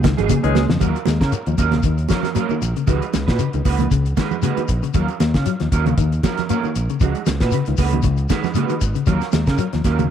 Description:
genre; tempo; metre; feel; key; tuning
afrobeat; 116 BPM; 4/4; swing 55% on 16ths; Eb minor; A4 = 440 Hz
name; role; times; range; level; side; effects
semi-hollow electric guitar; arpeggios; 0.0-10.1 s; Db3 to Bb3; -24 LUFS; left 10 dB; none
fingered electric bass; bass; 0.0-10.1 s; Ab1 to Db3; -20 LUFS; equal; none
damped 70s drum kit; drums; 0.0-10.1 s; hi-hat, kick drum, snare drum; -21 LUFS; equal; none
congas; percussion; 0.0-10.1 s; none; -24 LUFS; right 11 dB; none
shekere; percussion; 0.0-10.1 s; none; -27 LUFS; left 5 dB; none
electric guitar at the edge of break-up; stabs; 0.2-10.0 s; Gb3 to Cb5; -26 LUFS; right 10 dB; ensemble chorus
barky tine electric piano; accompaniment; 0.4-0.6 s; Ab3 to Ab4; -27 LUFS; left 12 dB; overdrive, medium tremolo
room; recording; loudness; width
light reverb; 1960s-style stereo with parts hard left and right; -16 LUFS; side -9 dB against mid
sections
0.8-10.1 A section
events
drum fill 0.6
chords
0.0 Db7sus2; 0.8 Ebm9; 2.9 Db9sus4; 4.9 Ebm9; 7.0 Db9sus4; 9.1 Ebm9

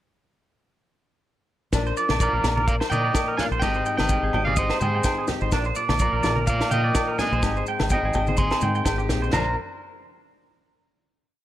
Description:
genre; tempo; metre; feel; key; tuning
highlife guitar band; 126 BPM; 4/4; swing 55% on 16ths; Bb mixolydian; A4 = 436 Hz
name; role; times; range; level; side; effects
picked steel-string acoustic guitar; accompaniment; 1.7-9.6 s; Ab2 to Bb4; -31 LUFS; left 7 dB; none
clean electric guitar; arpeggios; 1.7-9.5 s; D4 to G5; -28 LUFS; right 5 dB; wide subtle chorus, analog delay
deep dub fingered electric bass; bass; 1.7-9.6 s; Ab1 to Bb2; -26 LUFS; equal; none
tight funk drum kit; drums; 1.7-9.4 s; crash cymbal, kick drum, snare drum, toms; -27 LUFS; equal; none
agogo bells; percussion; 1.7-9.5 s; none; -35 LUFS; left 4 dB; none
maracas; percussion; 1.7-9.6 s; none; -37 LUFS; left 9 dB; none
congas; percussion; 2.1-9.6 s; none; -31 LUFS; left 2 dB; none
electric guitar at the edge of break-up; melody; 2.2-9.6 s; Ab4 to C6; -26 LUFS; right 1 dB; none
room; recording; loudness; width
light reverb; none; -20 LUFS; side -13 dB against mid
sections
1.7-9.3 A section; 9.3-11.2 final chord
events
none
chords
1.7 Bbadd9; 3.6 Abmaj7; 5.5 Bb; 7.4 Abmaj7; 9.3 Bb

